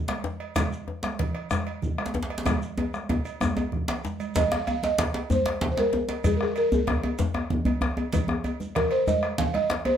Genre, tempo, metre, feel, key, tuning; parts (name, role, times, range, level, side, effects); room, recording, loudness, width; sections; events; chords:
west african traditional, West African drum ensemble; 127 BPM (dotted quarters); 12/8; straight; Ab major pentatonic; A4 = 440 Hz
bombo; percussion; 0.1-9.8 s; -30 LUFS; left 1 dB
congas; percussion; 0.1-9.7 s; -34 LUFS; right 5 dB
cowbell; percussion; 0.1-10.0 s; -38 LUFS; right 7 dB
djembe; percussion; 0.1-10.0 s; -28 LUFS; equal
djembe; percussion; 0.2-9.9 s; -31 LUFS; left 4 dB
shekere; percussion; 0.6-9.2 s; -38 LUFS; right 2 dB
balafon; melody; 4.4-10.0 s; Ab4 to F5; -25 LUFS; right 1 dB; plate reverb
moderate studio reverb, RT60 0.6 s; -24 LUFS; side -9 dB against mid
0.0-4.4 A section; 4.4-10.0 B section
drum fill 2.5-4.4